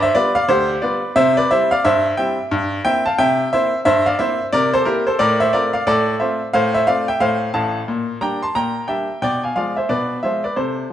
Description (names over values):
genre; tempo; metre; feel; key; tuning
ragtime piano; 89 BPM; 2/4; swing 60% on 16ths; F major; A4 = 440 Hz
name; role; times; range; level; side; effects
bright upright piano; solo; 0.0-10.9 s; A1 to C6; -16 LUFS; equal; none
room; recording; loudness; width
moderate recital hall reverb, RT60 1.4 s; nothing above 10.6 kHz; -16 LUFS; side -11 dB against mid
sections
0.0-10.9 A section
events
none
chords
0.0 G7; 1.2 C; 2.5 C7/G; 5.2 F/A; 7.9 Gm/Bb; 9.2 Bdim7